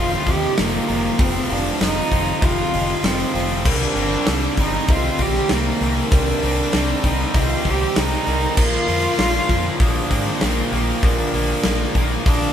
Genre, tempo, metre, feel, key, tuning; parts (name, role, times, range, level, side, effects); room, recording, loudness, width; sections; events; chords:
post-rock; 98 BPM; 4/4; straight; A4 = 439 Hz
warm cello; melody; 0.0-12.5 s; Bb3 to G4; -23 LUFS; right 1 dB
deep dark ambient pad; sustained chords; 0.7-12.5 s; Eb3 to D6; -34 LUFS; equal
vibraphone with soft mallets; arpeggios; 0.0-12.5 s; Bb4 to Eb6; -30 LUFS; right 4 dB
distorted electric guitar; riff; 0.0-12.5 s; F2 to C4; -24 LUFS; left 1 dB; overdrive
fingered electric bass; bass; 0.0-12.4 s; F1 to Ab2; -25 LUFS; equal
huge arena drum kit; drums; 0.3-12.4 s; crash cymbal, hi-hat, kick drum, snare drum; -21 LUFS; equal
moderate stone room reverb, RT60 1.2 s; band playing live in one room; -17 LUFS; side -9 dB against mid
0.0-12.5 A section
0.0 F5; 3.7 Cm9; 8.6 Bb13